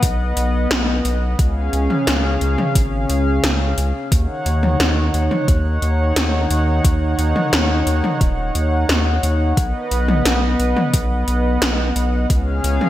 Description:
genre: synthwave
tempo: 88 BPM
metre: 4/4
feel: straight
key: Eb minor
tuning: A4 = 436 Hz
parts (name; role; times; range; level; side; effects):
- warm analog pad; sustained chords; 0.0-12.9 s; Db3 to F#5; -21 LUFS; equal; chorus, sidechain pumping
- round analog bass; bass; 0.0-12.8 s; Eb1 to Eb2; -19 LUFS; equal; none
- 80s electronic pad drums; drums; 0.0-12.9 s; hi-hat, snare drum, toms; -21 LUFS; equal; gated reverb on snare and toms, gated reverb
- electronic kick drum; drums; 0.0-12.4 s; none; -17 LUFS; equal; overdrive
room: light reverb, digital ambience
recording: none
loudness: -15 LUFS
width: side -13 dB against mid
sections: 0.0-12.9 A section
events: none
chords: 0.0 B; 1.4 Db; 4.1 Ebm7; 9.6 B; 12.3 Db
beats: 0.03 0.71 | 1.39 2.07 2.75 3.44 | 4.12 4.80 5.48 6.16 | 6.84 7.53 8.21 8.89 | 9.57 10.25 10.94 11.62 | 12.30

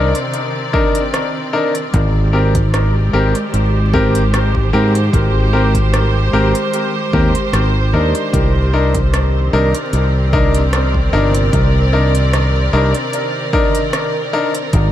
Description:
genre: ambient dub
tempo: 75 BPM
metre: 4/4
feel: swing 53% on 16ths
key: C minor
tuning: A4 = 441 Hz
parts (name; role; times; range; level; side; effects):
- clear symphonic string section; sustained chords; 0.0-14.9 s; C3 to D5; -20 LUFS; right 1 dB; vintage 12-bit sampler grit
- bright upright piano; stabs; 0.0-14.5 s; C4 to Bb4; -18 LUFS; left 2 dB; low-pass filter, dub echo
- fingered electric bass; bass; 0.0-14.9 s; G1 to Ab2; -14 LUFS; equal; none
- organic electronic drum kit; drums; 0.1-14.9 s; hi-hat, rim click; -25 LUFS; right 1 dB; overdrive, dub echo
- electronic kick drum; drums; 0.7-14.9 s; none; -19 LUFS; equal; overdrive
room: light reverb, digital ambience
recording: vinyl crackle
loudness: -12 LUFS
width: side -12 dB against mid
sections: 0.0-14.9 A section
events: none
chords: 0.0 Cm7; 1.9 Abmaj7; 8.3 Cm7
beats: 0.33 1.13 | 1.93 2.73 3.53 4.33 | 5.13 5.93 6.73 7.53 | 8.33 9.13 9.93 10.73 | 11.53 12.33 13.13 13.93 | 14.73

